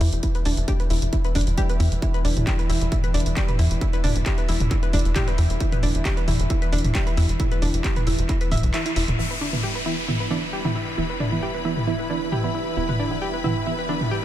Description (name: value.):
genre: driving peak-time techno.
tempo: 134 BPM.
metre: 4/4.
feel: straight.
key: unclear.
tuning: A4 = 440 Hz.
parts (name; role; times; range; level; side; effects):
analog pluck; riff; 0.0-14.2 s; D4 to E5; -28 LUFS; equal; chorus, overdrive, sidechain pumping, diffuse ambient delay.
tight sequencer bass; bass; 0.0-14.2 s; D1 to E2; -24 LUFS; equal; sidechain pumping.
analog drone; drone; 0.0-14.2 s; E3 to E4; -32 LUFS; equal; chorus, sidechain pumping.
techno drum kit; drums; 0.0-14.1 s; handclaps, hi-hat, toms; -28 LUFS; right 1 dB; sidechain pumping on hats, sidechain pumping on cymbals, sidechain pumping on toms.
electronic kick drum; drums; 0.2-8.6 s; none; -23 LUFS; equal; distortion.
wavetable chord stab; stabs; 9.2-14.0 s; E3 to E4; -28 LUFS; right 3 dB; sidechain pumping, diffuse ambient delay.
downlifter and riser; sound effects; 9.2-14.2 s; none; -33 LUFS; left 1 dB; none.
bright studio string section; texture; 9.2-14.2 s; E4 to B5; -32 LUFS; left 2 dB; sidechain pumping.
room: light reverb.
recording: none.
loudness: -20 LUFS.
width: side -13 dB against mid.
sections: 0.0-9.2 A section; 9.2-14.2 B section.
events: kick drops out 8.7-9.2; band accent 8.7; filter sweep on synth stab 9.2-14.2.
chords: 0.0 E5.